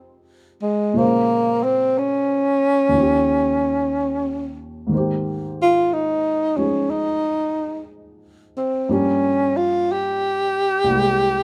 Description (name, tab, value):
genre	jazz ballad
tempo	60 BPM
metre	4/4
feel	swing 66% on 8ths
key	unclear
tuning	A4 = 440 Hz
part	dark baby grand piano	accompaniment	0.0-11.4 s	C2 to C5	-27 LUFS	equal	none
part	breathy tenor saxophone	melody	0.6-11.4 s	Ab3 to G4	-20 LUFS	equal	none
room	light reverb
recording	none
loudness	-20 LUFS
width	mono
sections	0.0-11.4 A section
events	none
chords	0.0 Fm11; 1.0 Bbm7; 2.9 Eb9; 4.9 Abmaj7; 8.9 Gm7b5; 10.9 C7b13